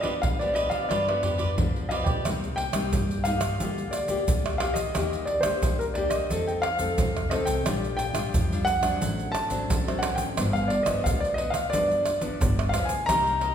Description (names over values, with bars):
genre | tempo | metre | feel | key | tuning
samba and choro | 89 BPM | 4/4 | straight | unclear | A4 = 441 Hz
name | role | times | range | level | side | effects
warm concert grand piano | melody | 0.0-13.5 s | Bb4 to Bb5 | -28 LUFS | equal | none
cavaquinho | accompaniment | 0.0-2.2, 13.1-13.5 s | Eb4 to Eb5 | -33 LUFS | right 4 dB | none
nylon-string guitar | accompaniment | 0.0-13.5 s | G2 to A4 | -31 LUFS | left 3 dB | none
surdo, pandeiro, tamborim and tube shaker | percussion | 0.0-13.5 s | none | -28 LUFS | right 1 dB | none
upright bass | bass | 2.3-13.5 s | G1 to G2 | -32 LUFS | equal | none
room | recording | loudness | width
wet recital hall reverb, RT60 1.5 s | recorded in a church or concert hall | -23 LUFS | side -8 dB against mid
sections
0.0-2.3 A section; 2.3-13.5 B section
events
drum fill 0.9-2.3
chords
0.0 G7; 2.3 Cm7; 3.6 Gm7/D; 5.0 Ebmaj7; 6.3 F7; 7.7 Bb6; 9.0 D7/A; 10.4 G7